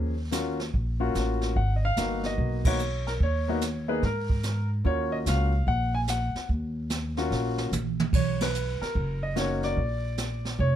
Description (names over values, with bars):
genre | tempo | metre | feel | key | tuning
jazz piano trio | 146 BPM | 4/4 | swing 65% on 8ths | Eb minor | A4 = 439 Hz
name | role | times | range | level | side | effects
clear grand piano | melody | 0.0-10.8 s | F3 to Ab5 | -29 LUFS | left 2 dB | none
upright bass | bass | 0.0-10.8 s | F1 to Ab2 | -28 LUFS | equal | none
jazz brush drum kit | drums | 0.3-10.8 s | brushed snare drum, crash cymbal, hi-hat, kick drum, ride cymbal, snare drum, toms | -30 LUFS | right 2 dB | none
room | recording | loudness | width
little or no reverb | none | -25 LUFS | side -11 dB against mid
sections
0.0-10.8 A section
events
band accent 2.6, 8.3; drum fill 7.3-8.1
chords
0.0 Ebm7; 1.6 Abm7; 4.8 Ebm7; 8.1 Bmaj7; 9.8 Bb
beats
0.33 0.74 1.15 | 1.56 1.97 2.38 2.79 | 3.20 3.61 4.02 4.43 | 4.84 5.25 5.67 6.08 | 6.49 6.90 7.31 7.72 | 8.13 8.54 8.95 9.36 | 9.77 10.18 10.59